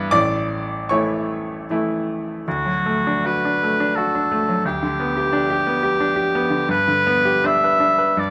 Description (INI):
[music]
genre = classical, romantic duo for oboe and grand piano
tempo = 74-89 BPM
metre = 3/4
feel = rubato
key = D major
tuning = A4 = 438 Hz
[part]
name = bright grand piano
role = accompaniment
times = 0.0-8.3 s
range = A1 to D6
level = -23 LUFS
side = equal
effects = none
[part]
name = clear oboe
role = melody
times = 2.5-8.3 s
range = F#4 to E5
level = -21 LUFS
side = equal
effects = none
[sound]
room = moderate recital hall reverb, RT60 1.4 s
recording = close, detailed microphones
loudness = -20 LUFS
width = mono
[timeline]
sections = 0.0-2.5 A section; 2.5-8.3 A section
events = none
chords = 0.1 A; 2.5 D; 4.6 G/D; 6.7 G